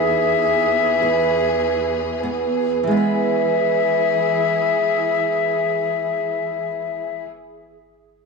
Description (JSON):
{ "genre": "celtic folk, Celtic slow air", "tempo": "45-58 BPM", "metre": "3/4", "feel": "rubato", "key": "E major", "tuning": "A4 = 440 Hz", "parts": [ { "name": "wooden flute", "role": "melody", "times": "0.0-7.2 s", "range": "E5", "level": "-20 LUFS", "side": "left 8 dB", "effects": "none" }, { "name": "mellow hollow wooden flute", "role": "second line", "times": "0.0-7.3 s", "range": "G#4", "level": "-27 LUFS", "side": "right 12 dB", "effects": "tape echo" }, { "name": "fingerpicked steel-string acoustic guitar", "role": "accompaniment", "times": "0.0-7.4 s", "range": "E3 to B4", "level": "-22 LUFS", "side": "right 5 dB", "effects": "none" }, { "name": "rich studio string section", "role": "sustained chords", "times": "0.0-7.3 s", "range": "E2 to G#4", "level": "-28 LUFS", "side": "left 2 dB", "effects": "none" } ], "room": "moderate echo chamber reverb, RT60 2.2 s", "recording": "1960s-style stereo with parts hard left and right, faint mains hum", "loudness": "-17 LUFS", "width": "side -4 dB against mid", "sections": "0.0-2.9 A section; 2.9-6.8 B section", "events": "slowing down 0.0-2.9", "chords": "0.0 E", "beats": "0.44 1.59 | 2.87 4.17 5.46" }